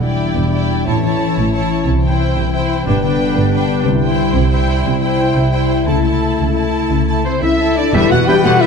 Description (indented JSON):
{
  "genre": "cinematic, heroic adventure film score",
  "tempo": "120 BPM (dotted quarters)",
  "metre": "12/8",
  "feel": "straight",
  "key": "unclear",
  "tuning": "A4 = 440 Hz",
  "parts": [
    { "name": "rich symphonic violin section", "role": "melody", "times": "0.0-8.7 s", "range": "C5 to A5", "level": "-23 LUFS", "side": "left 2 dB", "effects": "none" },
    { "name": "rich studio violin section", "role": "second line", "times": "0.0-8.7 s", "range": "A4 to G5", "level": "-24 LUFS", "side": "left 2 dB", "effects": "none" },
    { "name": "rich symphonic viola section", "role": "accompaniment", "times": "0.0-8.6 s", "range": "D3 to E4", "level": "-21 LUFS", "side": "right 3 dB", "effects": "none" },
    { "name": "mellow French horn section", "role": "sustained chords", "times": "0.0-8.7 s", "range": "E3 to G4", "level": "-18 LUFS", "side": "left 5 dB", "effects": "none" },
    { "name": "concert harp", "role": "arpeggios", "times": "0.0-8.7 s", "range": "G2 to D6", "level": "-21 LUFS", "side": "left 8 dB", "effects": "none" },
    { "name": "rich studio cello section", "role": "bass", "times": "0.0-8.5 s", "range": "E2 to C#3", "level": "-23 LUFS", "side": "right 3 dB", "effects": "none" },
    { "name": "rich studio double bass section", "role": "bass", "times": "0.0-8.5 s", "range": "E1 to C#2", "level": "-19 LUFS", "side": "right 3 dB", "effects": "none" },
    { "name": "bright oboe", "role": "second line", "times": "7.2-8.7 s", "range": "C5 to G5", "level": "-22 LUFS", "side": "right 1 dB", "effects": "none" },
    { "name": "warm clarinet", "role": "second line", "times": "8.0-8.7 s", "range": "B4", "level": "-24 LUFS", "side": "right 1 dB", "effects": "none" },
    { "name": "dark trombone section", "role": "sustained chords", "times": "8.3 s", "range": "E3 to G3", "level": "-27 LUFS", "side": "right 3 dB", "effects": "none" },
    { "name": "warm trumpet", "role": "stabs", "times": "8.3 s", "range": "B4", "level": "-23 LUFS", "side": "right 2 dB", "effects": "none" }
  ],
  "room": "wet scoring stage reverb, RT60 1.8 s",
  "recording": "dark, warm production",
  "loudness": "-13 LUFS",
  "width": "side -5 dB against mid",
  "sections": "0.0-7.9 A section",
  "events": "none",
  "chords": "0.0 Em7; 0.9 A; 1.9 C; 2.9 G; 3.9 C; 5.9 A/C#; 7.9 Em7",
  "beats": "0.37 0.87 1.37 | 1.87 2.37 2.87 3.37 | 3.86 4.35 4.85 5.35 | 5.86 6.38 6.90 7.42 | 7.94 8.44"
}